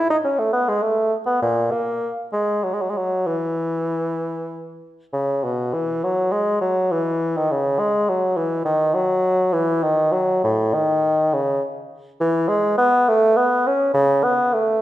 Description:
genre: classical, baroque-style fantasia for unaccompanied bassoon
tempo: 63-70 BPM (dotted quarters)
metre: 6/8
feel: rubato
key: E major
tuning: A4 = 441 Hz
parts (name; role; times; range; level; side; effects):
- mellow bassoon; solo; 0.0-14.8 s; A2 to D#4; -18 LUFS; equal; none
room: wet recital hall reverb, RT60 1.4 s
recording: none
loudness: -18 LUFS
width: side -14 dB against mid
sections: 0.0-5.1 A section; 5.1-14.8 B section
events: none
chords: none

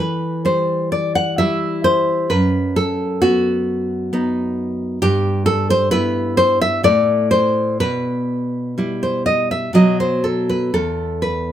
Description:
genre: romantic piece for solo classical guitar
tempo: 59-67 BPM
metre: 3/4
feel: rubato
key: E minor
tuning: A4 = 440 Hz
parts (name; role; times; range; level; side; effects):
- nylon-string guitar; solo; 0.0-11.5 s; E2 to F#5; -16 LUFS; equal; none
room: moderate studio reverb, RT60 0.7 s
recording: band playing live in one room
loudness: -16 LUFS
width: side -10 dB against mid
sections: 0.0-11.5 A section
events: none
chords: 0.0 Em; 2.3 B/F#; 5.0 Em/G; 6.8 Am; 7.8 Em/B; 9.7 B5; 10.7 E5

